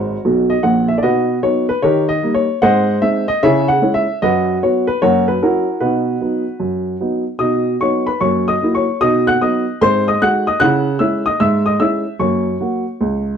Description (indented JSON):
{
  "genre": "jazz, stride piano",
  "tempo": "150 BPM",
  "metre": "4/4",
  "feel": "swing 66% on 8ths",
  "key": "B major",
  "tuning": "A4 = 439 Hz",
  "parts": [
    { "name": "warm upright piano", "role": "solo", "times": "0.0-13.4 s", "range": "G#1 to F#6", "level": "-14 LUFS", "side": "equal", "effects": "none" }
  ],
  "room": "moderate club reverb, RT60 0.7 s",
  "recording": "dark, warm production",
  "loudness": "-14 LUFS",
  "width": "side -7 dB against mid",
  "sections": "0.0-7.4 A section; 7.4-13.4 A section",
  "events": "upright piano fill 0.0-1.0",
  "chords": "0.0 F#; 1.0 B; 1.8 D#; 2.6 G#7; 3.4 C#m; 4.2 B/F#; 5.0 F#7; 5.8 B; 8.2 F#7; 9.0 B; 9.8 G#7; 10.6 C#m; 12.2 F#"
}